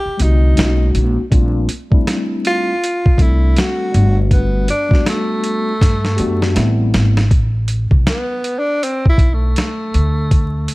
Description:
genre	hip hop, jazz-hop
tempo	80 BPM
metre	4/4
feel	swing 62% on 16ths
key	A dorian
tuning	A4 = 440 Hz
part	breathy tenor saxophone	melody	0.0-10.7 s	A3 to G4	-20 LUFS	equal	none
part	upright bass	bass	0.1-10.7 s	G1 to G2	-15 LUFS	equal	none
part	mellow tine electric piano	accompaniment	0.2-7.2 s	D3 to A4	-21 LUFS	left 2 dB	medium stereo tremolo
part	boom bap sampler-style drum kit	drums	0.2-10.7 s	hi-hat, kick drum, snare drum	-15 LUFS	equal	none
room	studio reverb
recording	dark, warm production, vinyl crackle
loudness	-13 LUFS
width	side -21 dB against mid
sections	0.0-7.3 A section; 7.3-10.7 B section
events	drum fill 5.8-7.3; tenor saxophone solo 7.3-10.7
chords	0.0 D7sus4; 0.6 Bmaj13; 1.3 Bbmaj13; 3.9 Gmaj9; 6.6 Am9; 7.3 Asus2; 9.9 D5

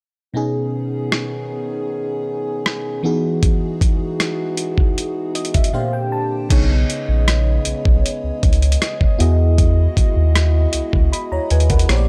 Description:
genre	contemporary R&B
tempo	78 BPM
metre	4/4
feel	straight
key	B major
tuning	A4 = 441 Hz
part	FM electric piano with soft pad layer	accompaniment	0.3-12.1 s	A#2 to B5	-26 LUFS	equal	chorus, phaser
part	warm French horn section	sustained chords	0.3-12.1 s	C#3 to D#5	-28 LUFS	equal	none
part	dusty soul sampler-style drum kit	drums	1.1-12.1 s	crash cymbal, hi-hat, kick drum, rim click	-20 LUFS	equal	overdrive
part	round analog bass	bass	6.5-12.1 s	A#1 to E2	-18 LUFS	equal	none
room	little or no reverb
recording	dry, gritty hardware recording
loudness	-18 LUFS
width	mono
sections	0.4-6.5 A section; 6.5-12.1 B section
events	FM electric piano fill 5.0-6.5; drums muted 5.7-6.5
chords	0.4 B69; 3.0 Emaj9; 5.7 A#69; 6.5 B69; 9.2 Emaj9

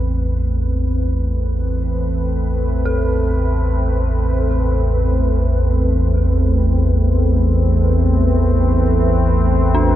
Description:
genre	dark ambient drone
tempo	free time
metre	none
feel	none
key	A minor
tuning	A4 = 440 Hz
part	deep dark ambient pad	sustained chords	0.0-10.0 s	A3 to B4	-21 LUFS	equal	chorus, built-in reverb
part	deep rumbling drone	drone	0.0-10.0 s	A1 to E2	-15 LUFS	equal	built-in reverb
part	dark detuned synth bell	arpeggios	2.9-10.0 s	D4 to A4	-28 LUFS	right 1 dB	chorus, tape echo
room	light reverb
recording	none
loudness	-14 LUFS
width	side -12 dB against mid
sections	0.0-10.0 A section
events	fade-in on ambient pad 0.0-10.0; fade-in on synth bell 0.0-10.0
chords	0.0 Amadd9

